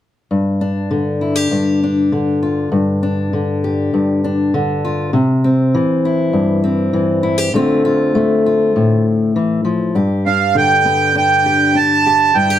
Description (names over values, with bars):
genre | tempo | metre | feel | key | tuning
folk | 100 BPM | 4/4 | straight | unclear | A4 = 440 Hz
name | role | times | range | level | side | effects
fingerpicked steel-string acoustic guitar | accompaniment | 0.3-12.6 s | G2 to G4 | -14 LUFS | left 2 dB | none
accordion | melody | 10.3-12.6 s | F5 to A5 | -12 LUFS | right 4 dB | slapback echo
room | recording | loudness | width
moderate large studio reverb, RT60 1.1 s | none | -13 LUFS | side -11 dB against mid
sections
0.3-9.9 A section; 9.9-12.6 B section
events
none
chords
0.3 G5; 5.1 C; 7.5 Dm7; 9.9 Gadd9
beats
| 0.31 0.92 1.52 2.12 | 2.72 3.33 3.93 4.53 | 5.13 5.73 6.33 6.94 | 7.54 8.14 8.74 9.34 | 9.95 10.55 11.15 11.75 | 12.35